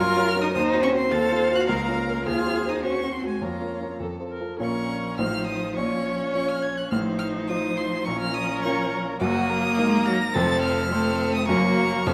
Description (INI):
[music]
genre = quick classical-period movement for piano quintet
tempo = 105 BPM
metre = 2/4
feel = straight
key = Bb minor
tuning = A4 = 441 Hz
[part]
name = rich violin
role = melody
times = 0.0-12.1 s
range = Ab5 to Bb6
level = -32 LUFS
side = equal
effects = none
[part]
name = warm cello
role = second line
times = 0.0-12.1 s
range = F3 to A4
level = -31 LUFS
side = equal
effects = none
[part]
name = warm violin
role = second line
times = 0.0-12.1 s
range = Gb4 to F5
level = -34 LUFS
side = equal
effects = none
[part]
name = warm grand piano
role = accompaniment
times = 0.0-12.1 s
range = F1 to Db5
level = -29 LUFS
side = equal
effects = none
[part]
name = warm viola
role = accompaniment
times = 0.0-12.1 s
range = Bb3 to C5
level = -30 LUFS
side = equal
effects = none
[sound]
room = moderate recital hall reverb, RT60 1.6 s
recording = none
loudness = -24 LUFS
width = mono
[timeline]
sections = 0.0-4.6 A section; 4.6-12.1 B section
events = none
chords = 0.0 Gb; 0.5 Cdim/Eb; 1.1 F7/Eb; 1.7 Bbm/Db; 2.3 Cdim/Eb; 3.4 Bbm/F; 4.0 F; 4.6 Bbm; 5.2 F7/A; 5.8 Bbm; 6.9 F7/A; 8.1 Bbm; 9.2 Ebm/Gb; 10.3 F; 11.5 Gb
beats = 0.55 | 1.12 1.69 | 2.26 2.84 | 3.43 4.02 | 4.61 5.19 | 5.77 6.34 | 6.92 7.50 | 8.07 8.64 | 9.21 9.78 | 10.35 10.92 | 11.49 12.07